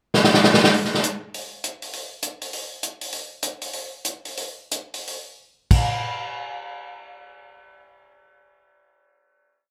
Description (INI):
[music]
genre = jazz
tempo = 141-201 BPM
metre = 4/4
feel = swing 62% on 8ths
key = none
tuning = none
[part]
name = swinging big-band drum kit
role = drums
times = 0.1-5.8 s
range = crash cymbal, hi-hat, kick drum, snare drum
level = -22 LUFS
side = equal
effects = none
[sound]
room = light reverb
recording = none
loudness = -23 LUFS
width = mono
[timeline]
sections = 0.0-0.7 pickup bar; 0.7-5.9 A section; 5.9-9.3 final hit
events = drum fill 0.1-0.7, 5.5-5.9; slowing down 3.1-5.9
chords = none